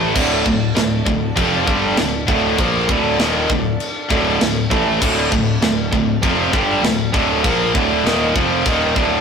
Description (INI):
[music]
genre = heavy metal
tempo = 99 BPM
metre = 4/4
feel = straight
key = D minor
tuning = A4 = 440 Hz
[part]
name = warm chamber string section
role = sustained chords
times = 0.0-9.2 s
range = F3 to D5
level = -31 LUFS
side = left 1 dB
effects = none
[part]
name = heavy high-gain guitar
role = riff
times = 0.0-9.2 s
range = D2 to Bb3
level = -21 LUFS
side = left 7 dB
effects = distortion
[part]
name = tight distorted guitar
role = riff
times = 0.0-9.2 s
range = D2 to Bb3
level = -19 LUFS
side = right 3 dB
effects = distortion
[part]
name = tight distorted guitar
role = riff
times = 0.0-9.2 s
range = D2 to Bb3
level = -22 LUFS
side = equal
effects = distortion
[part]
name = modern bright picked electric bass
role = bass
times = 0.0-9.2 s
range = D1 to Bb1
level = -26 LUFS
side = right 1 dB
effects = none
[part]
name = tight metal drum kit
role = drums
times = 0.2-9.1 s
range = china cymbal, crash cymbal, kick drum, snare drum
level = -21 LUFS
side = equal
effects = none
[sound]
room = moderate stone room reverb, RT60 1.0 s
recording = rough rehearsal-room recording, warm saturation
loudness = -14 LUFS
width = side -6 dB against mid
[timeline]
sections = 0.0-9.2 A section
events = none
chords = 0.0 Dm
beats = | 0.15 0.76 1.36 1.97 | 2.58 3.19 3.79 4.40 | 5.01 5.62 6.22 6.83 | 7.44 8.05 8.65